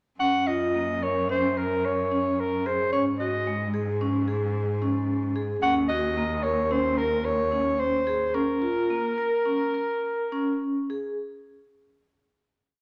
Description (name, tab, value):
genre	contemporary instrumental, chamber music in an uneven meter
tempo	110 BPM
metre	5/4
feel	straight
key	Bb minor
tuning	A4 = 440 Hz
part	breathy soprano saxophone	melody	0.2-10.6 s	Bb4 to Gb5	-28 LUFS	equal	none
part	vibraphone with medium hard mallets	arpeggios	0.2-11.2 s	Ab3 to Bb4	-30 LUFS	equal	none
part	rich cello	bass	0.2-8.3 s	Eb2 to Ab2	-34 LUFS	equal	none
room	moderate recital hall reverb, RT60 1.7 s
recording	none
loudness	-26 LUFS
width	mono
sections	0.2-11.2 A section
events	slowing down 6.7-11.2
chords	0.2 Gb; 2.9 Absus4; 5.6 Eb7(no3); 8.3 Bbm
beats	| 0.19 0.74 1.29 1.84 2.38 | 2.93 3.47 4.01 4.55 5.08 | 5.62 6.17 6.71 7.25 7.79 | 8.34 8.89 9.45 10.02 10.61